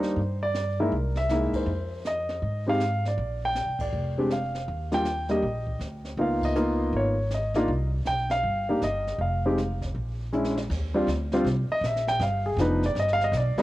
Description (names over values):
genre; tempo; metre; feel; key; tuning
jazz piano trio; 160 BPM; 4/4; swing 64% on 8ths; unclear; A4 = 438 Hz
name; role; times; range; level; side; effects
warm grand piano; melody; 0.0-13.6 s; F3 to G5; -26 LUFS; equal; cassette tape
upright bass; bass; 0.0-13.6 s; F1 to Ab2; -29 LUFS; equal; none
jazz brush drum kit; drums; 0.0-13.6 s; brushed snare drum, crash cymbal, hi-hat, kick drum, ride cymbal, snare drum; -38 LUFS; equal; cassette tape
room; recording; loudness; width
light reverb, studio reverb; home recording on cassette; -24 LUFS; side -16 dB against mid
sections
0.0-10.7 A section; 10.7-13.6 B section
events
band accent 1.5, 3.7, 6.4; drum fill 10.3-10.7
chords
0.2 Gm; 0.9 C7alt; 1.7 Fm7; 3.2 Bb6; 4.7 Ebmaj9; 6.2 Db13; 7.7 Cm; 9.2 N.C.; 9.9 Bbm7b5; 10.7 Ebmaj13; 12.2 G7b13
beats
| 0.17 0.55 0.92 1.30 | 1.67 2.05 2.43 2.80 | 3.18 3.55 3.93 4.31 | 4.68 5.06 5.43 5.81 | 6.19 6.56 6.94 7.32 | 7.69 8.07 8.44 8.82 | 9.20 9.57 9.95 10.32 | 10.70 11.08 11.45 11.83 | 12.20 12.58 12.95 13.33